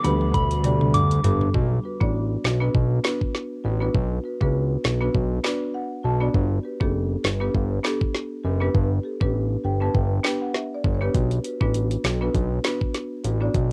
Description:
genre	dancehall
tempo	100 BPM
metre	4/4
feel	swing 56% on 16ths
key	B minor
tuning	A4 = 437 Hz
part	soft synth bell	melody	0.0-1.4 s	B5 to D6	-29 LUFS	equal	chorus, phaser, cassette tape
part	marimba with medium mallets	accompaniment	0.0-13.5 s	G3 to A5	-30 LUFS	equal	sidechain pumping, cassette tape
part	dark studio string section	sustained chords	0.0-1.5 s	D3 to B3	-36 LUFS	equal	sidechain pumping, cassette tape
part	fat analog bass	bass	0.0-13.7 s	F#1 to D2	-25 LUFS	equal	none
part	island pop drum kit	drums	0.0-13.7 s	handclaps, hi-hat, kick drum, rim click, snare drum, toms	-26 LUFS	equal	cassette tape
room	light reverb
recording	home recording on cassette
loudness	-23 LUFS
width	mono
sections	0.0-1.5 A section; 1.5-13.7 B section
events	drum fill 0.0-1.5; marimba fill 5.1-6.3, 9.3-11.1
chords	0.0 Bm; 6.3 G; 11.1 Bm

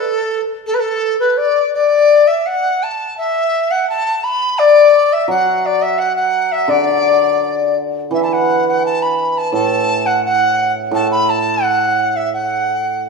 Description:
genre	chinese traditional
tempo	85 BPM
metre	2/4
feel	rubato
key	D gong mode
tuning	A4 = 440 Hz
part	breathy mellow dizi	melody	0.0-13.1 s	A4 to B5	-13 LUFS	left 2 dB	none
part	hammered dulcimer	accompaniment	5.3-13.0 s	A2 to F#3	-18 LUFS	right 3 dB	none
room	moderate recital hall reverb, RT60 1.5 s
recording	none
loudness	-13 LUFS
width	side -4 dB against mid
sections	0.0-8.1 A section; 8.1-13.1 B section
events	none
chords	none

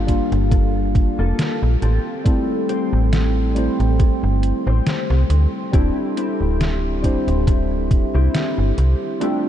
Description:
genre	vaporwave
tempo	69 BPM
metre	4/4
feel	swing 55% on 16ths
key	unclear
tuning	A4 = 440 Hz
part	tine electric piano	accompaniment	0.0-9.5 s	G3 to C5	-22 LUFS	left 1 dB	analog chorus, vintage 12-bit sampler grit, ping-pong delay
part	warbly tape-like pad	sustained chords	0.0-9.5 s	G4 to C6	-30 LUFS	right 2 dB	chorus, built-in reverb
part	slap-like FM bass	bass	0.0-8.9 s	D1 to D2	-18 LUFS	equal	none
part	mellow electric guitar	riff	0.1-9.4 s	A3 to C5	-29 LUFS	left 4 dB	analog chorus, ping-pong delay
part	detuned 8-bit digital drum machine	drums	0.1-9.4 s	hi-hat, snare drum	-29 LUFS	left 1 dB	none
part	electronic kick drum	drums	0.1-8.1 s	none	-18 LUFS	equal	none
room	light reverb, digital ambience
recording	cassette tape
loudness	-16 LUFS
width	side -11 dB against mid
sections	0.0-9.5 A section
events	none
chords	0.0 Gm9; 1.8 Am7; 5.7 D9sus4

